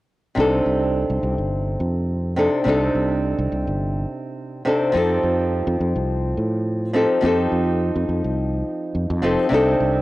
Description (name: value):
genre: sunset chillout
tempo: 105 BPM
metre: 4/4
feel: swing 54% on 16ths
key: C dorian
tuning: A4 = 438 Hz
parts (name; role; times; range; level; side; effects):
- flamenco guitar; accompaniment; 0.3-10.0 s; C3 to A4; -20 LUFS; equal; auto-pan, analog delay
- fretless electric bass; bass; 0.4-10.0 s; F1 to A2; -23 LUFS; equal; tube saturation
room: light reverb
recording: dry, gritty hardware recording, cassette tape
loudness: -18 LUFS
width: side -17 dB against mid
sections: 0.4-10.0 A section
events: none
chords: 0.4 Cm69; 4.9 F7